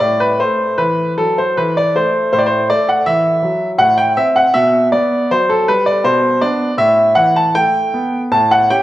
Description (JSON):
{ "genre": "classical, baroque-style suite movement for grand piano", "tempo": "79 BPM", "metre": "3/4", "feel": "rubato", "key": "unclear", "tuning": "A4 = 440 Hz", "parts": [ { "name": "clear grand piano", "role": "solo", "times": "0.0-8.8 s", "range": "A2 to A5", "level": "-12 LUFS", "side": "equal", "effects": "none" } ], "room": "wet recital hall reverb, RT60 1.7 s", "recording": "worn, warbling old tape, cassette tape, warbly pitch drift", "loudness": "-12 LUFS", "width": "side -15 dB against mid", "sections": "0.0-8.8 A section", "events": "none", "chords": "0.0 A5; 3.8 Am6; 4.6 B5; 6.0 Bm; 6.8 A5; 8.3 A7", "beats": "| 0.02 0.79 1.57 | 2.33 3.06 3.79 | 4.55 5.30 6.04 | 6.79 7.55 8.32" }